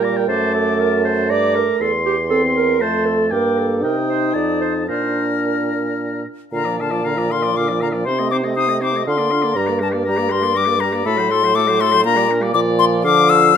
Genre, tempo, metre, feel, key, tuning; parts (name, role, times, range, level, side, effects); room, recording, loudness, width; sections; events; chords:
quick classical-period movement for wind quintet; 119 BPM; 3/4; rubato; Bb major; A4 = 439 Hz
bright concert flute; melody; 0.0-13.6 s; A5 to F6; -20 LUFS; left 8 dB
clear oboe; second line; 0.0-13.6 s; A4 to C6; -25 LUFS; left 3 dB
dark clarinet; accompaniment; 0.0-13.6 s; Bb3 to D5; -23 LUFS; right 7 dB
warm French horn; accompaniment; 0.0-13.6 s; D3 to Eb4; -23 LUFS; equal
mellow bassoon; bass; 0.0-13.6 s; E2 to D3; -21 LUFS; right 2 dB
moderate recital hall reverb, RT60 1.3 s; -15 LUFS; side -8 dB against mid
0.0-6.5 A section; 6.5-13.6 A section
0.3 D/F#; 1.3 Gm; 1.8 C/E; 2.8 F; 3.3 Gm; 3.8 Cm7; 4.4 F7; 4.9 Bb; 8.1 Adim/C; 9.1 Bb/D; 9.6 Gm; 11.1 F#dim/A; 12.1 Gm/Bb; 12.5 Bb